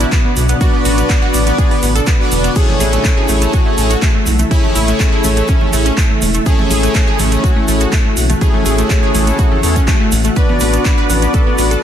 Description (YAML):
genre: progressive house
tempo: 123 BPM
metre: 4/4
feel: straight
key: A major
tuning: A4 = 437 Hz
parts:
  - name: shimmering ambient pad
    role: sustained chords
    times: 0.0-11.8 s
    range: B2 to F#4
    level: -22 LUFS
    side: left 1 dB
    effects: chorus, built-in reverb, sidechain pumping
  - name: wide unison pluck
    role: arpeggios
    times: 0.0-11.8 s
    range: A3 to B4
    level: -20 LUFS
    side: equal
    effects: sidechain pumping, tape echo
  - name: round analog bass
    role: bass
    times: 0.0-11.8 s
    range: E1 to E2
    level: -15 LUFS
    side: equal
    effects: sidechain pumping
  - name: house drum kit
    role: drums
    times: 0.0-11.8 s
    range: crash cymbal, handclaps, hi-hat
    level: -22 LUFS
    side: right 2 dB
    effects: sidechain pumping on hats, studio reverb, sidechain pumping on cymbals
  - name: egg shaker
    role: percussion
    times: 0.0-11.8 s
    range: none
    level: -26 LUFS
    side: right 1 dB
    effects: none
  - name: electronic kick drum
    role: drums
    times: 0.1-11.4 s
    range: none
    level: -14 LUFS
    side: equal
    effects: studio reverb
  - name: soft supersaw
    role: stabs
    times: 0.6-11.7 s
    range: B3 to D5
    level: -18 LUFS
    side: left 1 dB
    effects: sidechain pumping, tape echo
  - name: congas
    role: percussion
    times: 2.7-11.2 s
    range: none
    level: -26 LUFS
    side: left 2 dB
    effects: none
room: light reverb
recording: dense, heavily limited modern master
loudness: -11 LUFS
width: side -10 dB against mid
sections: 0.0-11.8 A section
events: none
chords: 0.0 Bm; 2.6 Amaj7; 10.4 Bm